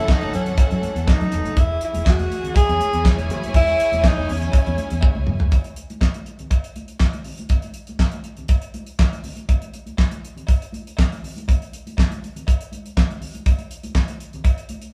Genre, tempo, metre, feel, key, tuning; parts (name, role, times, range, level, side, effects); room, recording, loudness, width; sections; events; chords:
disco; 121 BPM; 4/4; straight; A4 = 439 Hz
breathy tenor saxophone; melody; 0.0-5.3 s; C#4 to G#4; -25 LUFS; equal
warm studio violin section; second line; 0.0-5.5 s; C#4 to G#5; -34 LUFS; equal
clear studio string section; sustained chords; 0.0-5.5 s; E3 to A4; -36 LUFS; equal
fingered electric bass; bass; 0.0-5.5 s; E1 to F#2; -26 LUFS; equal
damped 70s drum kit; drums; 0.1-14.9 s; handclaps, hi-hat, kick drum, snare drum, toms; -20 LUFS; equal
cowbell; percussion; 0.1-14.6 s; -41 LUFS; equal
congas; percussion; 0.2-14.8 s; -38 LUFS; equal
moderate stone room reverb, RT60 1.1 s; band playing live in one room; -21 LUFS; mono
0.0-5.5 A section; 5.5-14.9 B section
drum fill 5.0-5.5
0.0 F#m7; 1.6 E6; 5.5 N.C.